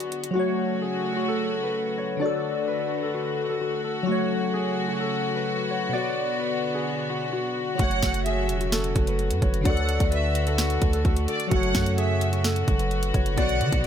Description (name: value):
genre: hip hop, trap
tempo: 129 BPM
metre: 4/4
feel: half-time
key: F# minor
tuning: A4 = 441 Hz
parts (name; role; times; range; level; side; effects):
- concert harp; melody; 0.0-13.9 s; F#4 to D5; -29 LUFS; left 4 dB; ping-pong delay
- dark studio string section; sustained chords; 0.0-13.9 s; C#3 to F#4; -30 LUFS; right 1 dB; none
- trap drum kit; drums; 0.0-0.3, 7.8-13.9 s; hi-hat, kick drum, snare drum; -26 LUFS; right 1 dB; none
- glassy digital keys; accompaniment; 0.3-13.9 s; B2 to D5; -30 LUFS; left 1 dB; chorus
- warm symphonic violin section; second line; 7.8-13.9 s; D5 to F#5; -30 LUFS; right 1 dB; ping-pong delay
- warm 808-style bass; bass; 7.8-13.9 s; E1 to D3; -26 LUFS; right 1 dB; none
room: little or no reverb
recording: none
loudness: -22 LUFS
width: side -9 dB against mid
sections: 0.4-13.9 A section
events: break 0.0-0.4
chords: 0.4 F#m; 2.2 D; 4.1 F#m; 5.9 Bm; 7.8 F#m; 9.7 D; 11.5 F#m